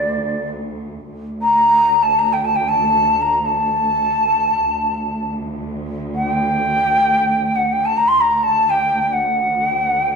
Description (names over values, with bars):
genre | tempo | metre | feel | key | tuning
Persian modal ensemble | free time | none | none | D dastgah homayun | A4 = 440 Hz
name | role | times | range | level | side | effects
breathy ney | melody | 0.0-10.2 s | D5 to C6 | -15 LUFS | equal | none
dark symphonic cello section | drone | 0.0-10.2 s | D2 | -26 LUFS | right 1 dB | none
room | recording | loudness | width
wet recital hall reverb, RT60 1.3 s | recorded in a church or concert hall | -15 LUFS | side -5 dB against mid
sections
0.0-1.1 A section; 1.1-10.2 A section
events
none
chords
none